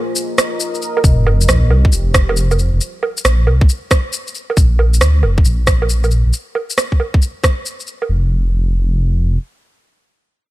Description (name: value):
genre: future garage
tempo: 136 BPM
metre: 4/4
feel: swing 66% on 16ths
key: unclear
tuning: A4 = 440 Hz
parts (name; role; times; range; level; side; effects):
- dark analog pad; sustained chords; 0.0-2.8 s; F4 to Eb5; -24 LUFS; left 1 dB; chorus, sidechain pumping
- electronic shaker, rim click and woodblock; drums; 0.2-8.1 s; none; -18 LUFS; right 2 dB; overdrive, small room ambience
- dark detuned saw bass; bass; 1.0-9.4 s; F1 to D2; -13 LUFS; equal; sidechain pumping
- electronic kick drum; drums; 1.0-7.6 s; none; -12 LUFS; equal; overdrive, small room ambience
- sub drop; sound effects; 1.0-2.8 s; none; -20 LUFS; equal; none
room: little or no reverb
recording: none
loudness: -12 LUFS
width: side -17 dB against mid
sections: 0.0-1.0 A section; 1.0-8.1 B section; 8.1-10.5 C section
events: break 0.0-1.0; impact 1.0-2.8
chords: 0.0 Ebsus2; 1.0 Fsus2; 4.6 Bb; 6.3 N.C.